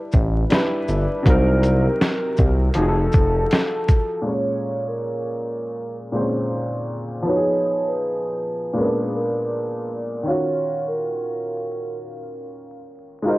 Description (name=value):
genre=lo-fi hip hop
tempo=80 BPM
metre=4/4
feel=swing 58% on 16ths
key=Bb minor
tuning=A4 = 440 Hz
part: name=clear upright piano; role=accompaniment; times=0.0-13.4 s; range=Bb2 to Db5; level=-24 LUFS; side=left 1 dB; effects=cassette tape, low-pass filter
part: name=smooth synth bass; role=bass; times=0.1-3.4 s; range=F1 to C2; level=-19 LUFS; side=equal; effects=transformer saturation
part: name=boom bap sampler-style drum kit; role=drums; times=0.1-4.1 s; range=hi-hat, kick drum, shaker, snare drum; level=-18 LUFS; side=equal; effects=cassette tape
part: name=vibraphone with soft mallets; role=melody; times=1.3-13.4 s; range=Ab4 to Eb5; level=-25 LUFS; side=right 1 dB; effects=low-pass filter, cassette tape, tape echo
room=light reverb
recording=home recording on cassette, vinyl crackle, low-pass filter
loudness=-19 LUFS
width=side -19 dB against mid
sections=0.0-4.3 A section; 4.3-13.4 B section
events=filter sweep 4.3-13.4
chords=0.0 G6; 1.3 Cm7b5; 2.8 F7b9; 4.3 Bbm9; 7.3 Fm7b5; 8.8 Bb7b9; 10.3 Ebm9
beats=0.51 | 1.26 2.01 2.76 3.51 | 4.26 5.01 5.76 6.51 | 7.26 8.01 8.76 9.51 | 10.26 11.01 11.76 12.51 | 13.26